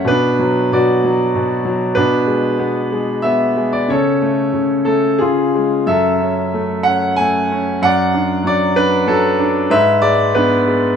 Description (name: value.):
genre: classical, lyrical solo piano.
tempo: 94 BPM.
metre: 3/4.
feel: rubato.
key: unclear.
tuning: A4 = 438 Hz.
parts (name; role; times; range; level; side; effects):
bright concert grand piano; solo; 0.0-11.0 s; F#2 to G#5; -13 LUFS; equal; none.
room: moderate recital hall reverb, RT60 1.5 s.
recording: minimal, uncompressed stereo recording.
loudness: -13 LUFS.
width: side -7 dB against mid.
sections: 0.0-11.0 A section.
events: none.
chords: 0.1 Bm; 2.0 G#dim/B; 3.9 A/C#; 5.2 C#; 5.9 F#m; 7.8 Bm7/F#; 9.7 G#dim.